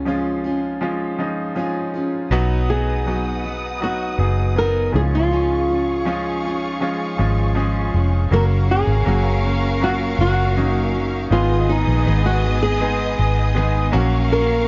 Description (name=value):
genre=pop ballad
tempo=80 BPM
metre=4/4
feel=straight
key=F# major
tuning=A4 = 441 Hz
part: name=flamenco guitar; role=melody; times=0.0-14.7 s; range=C#4 to A#4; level=-25 LUFS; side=equal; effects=none
part: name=clear grand piano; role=accompaniment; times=0.0-14.7 s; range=G#2 to G#4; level=-27 LUFS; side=equal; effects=none
part: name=fingerpicked steel-string acoustic guitar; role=arpeggios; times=0.0-14.7 s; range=F#2 to A#4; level=-30 LUFS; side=equal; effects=tape echo
part: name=vintage muted fingered electric bass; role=bass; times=0.0-14.7 s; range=E#1 to C#2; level=-22 LUFS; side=equal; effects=none
part: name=dark studio string section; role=sustained chords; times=2.3-14.7 s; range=B3 to D#6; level=-32 LUFS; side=equal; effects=plate reverb
part: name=rich studio violin section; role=second line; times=8.3-14.7 s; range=B3 to E#5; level=-30 LUFS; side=equal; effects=plate reverb
room=moderate studio reverb, RT60 0.6 s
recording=nothing above 7.5 kHz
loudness=-20 LUFS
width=mono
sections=0.0-8.3 A section; 8.3-14.7 B section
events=none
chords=0.0 C#; 2.3 B; 4.9 C#; 8.3 F#; 11.3 G#m; 13.9 F#/A#